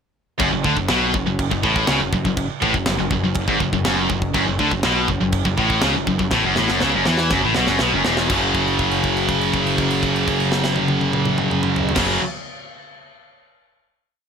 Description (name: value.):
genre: heavy metal.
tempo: 121 BPM.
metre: 4/4.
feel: straight.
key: F# minor.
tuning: A4 = 440 Hz.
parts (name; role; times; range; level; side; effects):
high-gain distorted guitar; riff; 0.4-12.2 s; E2 to F#3; -22 LUFS; left 10 dB; distortion.
high-gain distorted guitar; riff; 0.4-12.2 s; E2 to F#3; -25 LUFS; right 1 dB; distortion.
scooped high-gain guitar; riff; 0.4-12.2 s; E2 to F#3; -22 LUFS; right 10 dB; distortion.
growling picked electric bass; bass; 0.4-12.2 s; E1 to E2; -26 LUFS; equal; overdrive.
tight metal drum kit; drums; 0.4-12.1 s; china cymbal, crash cymbal, kick drum, snare drum, toms; -24 LUFS; equal; none.
room: little or no reverb.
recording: none.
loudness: -17 LUFS.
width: side -6 dB against mid.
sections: 0.4-8.3 riff; 8.3-12.3 final chord.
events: drum fill 6.3-8.3; held note 8.3-12.0.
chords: 0.4 F#m; 8.3 F#5.